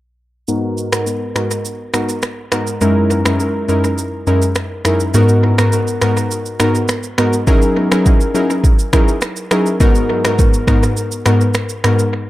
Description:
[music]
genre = afrobeats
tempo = 103 BPM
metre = 4/4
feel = straight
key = G# minor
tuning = A4 = 440 Hz
[part]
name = glassy digital keys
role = accompaniment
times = 0.5-12.0 s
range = F#2 to A#4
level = -14 LUFS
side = equal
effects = chorus, low-pass filter, analog delay
[part]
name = afro-pop drum kit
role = drums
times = 0.5-12.1 s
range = finger snaps, kick drum, rim click, shaker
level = -17 LUFS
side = equal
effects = analog delay
[sound]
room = light reverb, digital ambience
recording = echo-heavy mix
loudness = -13 LUFS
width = side -16 dB against mid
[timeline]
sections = 0.5-5.1 A section; 5.1-12.3 B section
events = filter sweep on synth keys 0.5-5.1; break 12.1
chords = 0.5 G#m7; 2.8 F#13; 5.1 G#m7; 7.5 F#13; 9.8 G#m7

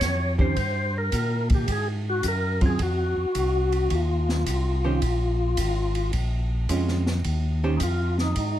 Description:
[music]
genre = soul jazz organ trio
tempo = 108 BPM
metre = 4/4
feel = swing 68% on 8ths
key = unclear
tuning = A4 = 440 Hz
[part]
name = percussive tonewheel organ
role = melody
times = 0.0-8.6 s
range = Eb4 to Db5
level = -27 LUFS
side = left 2 dB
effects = slow rotary speaker, overdrive, chorus vibrato
[part]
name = tonewheel organ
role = bass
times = 0.0-8.6 s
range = Ab1 to Bb2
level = -25 LUFS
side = equal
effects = overdrive, chorus vibrato, slow rotary speaker
[part]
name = open jazz drum kit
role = drums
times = 0.0-8.5 s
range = hi-hat, kick drum, ride cymbal, snare drum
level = -29 LUFS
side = equal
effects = none
[part]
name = archtop guitar, miked and amplified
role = accompaniment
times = 0.4-7.8 s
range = Eb3 to C5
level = -27 LUFS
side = right 4 dB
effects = none
[sound]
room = light reverb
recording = dark, warm production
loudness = -22 LUFS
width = side -12 dB against mid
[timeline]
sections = 0.0-8.6 A section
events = none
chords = 0.0 Eb13 (rootless); 1.7 Ab6; 3.9 Ebsus2; 6.1 Bbm7; 7.3 Eb13

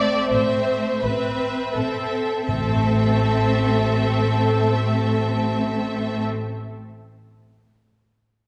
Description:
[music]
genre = classical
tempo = 43 BPM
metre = 3/4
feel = rubato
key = A minor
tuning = A4 = 437 Hz
[part]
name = bright studio violin section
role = melody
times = 0.0-6.2 s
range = E5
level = -34 LUFS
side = equal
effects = none
[part]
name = warm studio violin section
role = second line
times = 0.0-6.2 s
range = A4 to D5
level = -27 LUFS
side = equal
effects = none
[part]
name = rich studio viola section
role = accompaniment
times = 0.0-6.3 s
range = C4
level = -30 LUFS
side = equal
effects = none
[part]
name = rich studio cello section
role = bass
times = 0.0-6.3 s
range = A3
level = -29 LUFS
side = equal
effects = none
[part]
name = rich studio double bass section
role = bass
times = 0.3-6.3 s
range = A1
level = -26 LUFS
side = equal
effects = none
[part]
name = timpani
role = percussion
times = 2.5-6.3 s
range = A2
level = -32 LUFS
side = equal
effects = none
[sound]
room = wet concert hall reverb, RT60 1.8 s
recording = heard from further back in the room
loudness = -21 LUFS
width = mono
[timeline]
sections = 0.0-2.5 A section; 2.5-6.6 B section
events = slowing down 0.0-2.5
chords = 0.0 Am

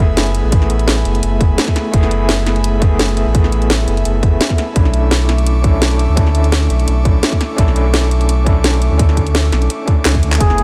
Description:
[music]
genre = liquid drum and bass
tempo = 170 BPM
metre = 4/4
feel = swing 54% on 16ths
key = unclear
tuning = A4 = 440 Hz
[part]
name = overdriven tine electric piano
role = accompaniment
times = 0.0-10.6 s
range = A3 to A4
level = -23 LUFS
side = equal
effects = medium tremolo, digital delay
[part]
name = airy breathy pad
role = sustained chords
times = 0.0-10.6 s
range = A3 to E6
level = -28 LUFS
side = equal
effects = chorus
[part]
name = sub bass with octave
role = bass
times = 0.0-10.6 s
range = F#1 to D2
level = -17 LUFS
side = equal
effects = none
[part]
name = garage drum kit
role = drums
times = 0.2-10.6 s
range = handclaps, hi-hat, snare drum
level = -21 LUFS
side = equal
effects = studio reverb
[part]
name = electronic kick drum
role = drums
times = 0.5-10.5 s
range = none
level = -16 LUFS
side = equal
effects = studio reverb
[part]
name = mellow flugelhorn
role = melody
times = 10.4-10.6 s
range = G#4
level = -18 LUFS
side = equal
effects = none
[sound]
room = little or no reverb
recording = none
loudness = -14 LUFS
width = mono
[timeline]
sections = 0.0-10.6 A section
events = drum fill 10.1-10.4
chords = 0.0 F#m11; 4.8 Bm11

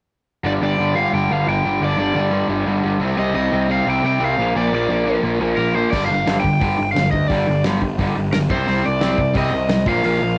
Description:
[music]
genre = punk rock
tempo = 175 BPM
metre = 4/4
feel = straight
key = G minor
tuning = A4 = 440 Hz
[part]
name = cranked stack guitar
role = riff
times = 0.4-10.4 s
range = G2 to C4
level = -25 LUFS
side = equal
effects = overdrive
[part]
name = overdriven semi-hollow guitar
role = riff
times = 0.4-10.4 s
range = G2 to C4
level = -25 LUFS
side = equal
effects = none
[part]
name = fuzz picked electric bass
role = bass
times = 0.4-10.4 s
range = G1 to D2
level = -26 LUFS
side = equal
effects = overdrive
[part]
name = crunchy overdriven guitar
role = melody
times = 0.5-10.4 s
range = Bb4 to G5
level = -24 LUFS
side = equal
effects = cassette tape
[part]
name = loose indie drum kit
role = drums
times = 5.9-10.1 s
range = crash cymbal, hi-hat, kick drum, snare drum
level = -27 LUFS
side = equal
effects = cassette tape
[sound]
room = light reverb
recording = home recording on cassette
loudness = -19 LUFS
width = mono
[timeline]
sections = 0.4-5.9 A section; 5.9-10.4 B section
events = none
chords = 0.4 G5; 3.0 Cm; 4.4 Bb; 5.9 G5; 8.5 Cm; 9.9 Bb5

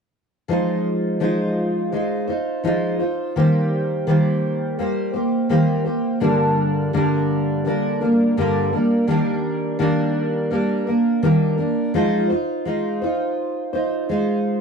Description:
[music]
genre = pop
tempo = 84 BPM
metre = 4/4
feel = swing 55% on 16ths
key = unclear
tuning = A4 = 440 Hz
[part]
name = fingerpicked steel-string acoustic guitar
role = accompaniment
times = 0.5-14.6 s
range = G2 to C5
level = -18 LUFS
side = equal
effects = double-tracked left and right
[sound]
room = moderate booth ambience, RT60 0.2 s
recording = dry, close 1970s-style studio recording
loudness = -18 LUFS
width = side -6 dB against mid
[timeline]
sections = 0.5-11.9 A section; 11.9-14.6 B section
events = none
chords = 0.5 Fm7; 3.4 Cm7/Eb; 6.2 Gm; 9.1 Ebmaj7; 11.9 Fm7

